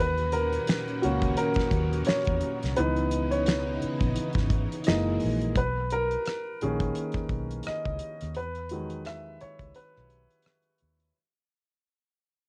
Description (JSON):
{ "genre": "R&B, neo-soul", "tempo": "86 BPM", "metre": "4/4", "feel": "swing 57% on 16ths", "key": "B major", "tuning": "A4 = 443 Hz", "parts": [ { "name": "warm upright piano", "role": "accompaniment", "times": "0.0-11.2 s", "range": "D#3 to E5", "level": "-31 LUFS", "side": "equal", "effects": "none" }, { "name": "string machine, full ensemble", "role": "sustained chords", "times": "0.0-5.6 s", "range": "A#2 to F#4", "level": "-36 LUFS", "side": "equal", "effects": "ensemble chorus" }, { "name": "vintage muted fingered electric bass", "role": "bass", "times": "0.0-11.1 s", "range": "F#1 to E2", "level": "-34 LUFS", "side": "equal", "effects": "none" }, { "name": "damped 70s drum kit", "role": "drums", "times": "0.2-11.1 s", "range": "finger snaps, hi-hat, kick drum, rim click, snare drum", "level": "-31 LUFS", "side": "equal", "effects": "cassette tape" } ], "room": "light reverb", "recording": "home recording on cassette", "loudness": "-28 LUFS", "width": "mono", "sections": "0.0-5.6 A section; 5.6-11.1 B section", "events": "upright piano solo 0.0-5.6, 5.6-11.1; fade-out 5.6-11.1; break 9.7-11.1", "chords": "0.0 D#m7; 2.8 C#m9; 4.9 F#13; 5.6 Bmaj9; 8.3 Emaj9", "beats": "0.67 1.37 2.07 | 2.77 3.46 4.16 4.86 | 5.56 6.26 6.95 7.65 | 8.35 9.05 9.74 10.44" }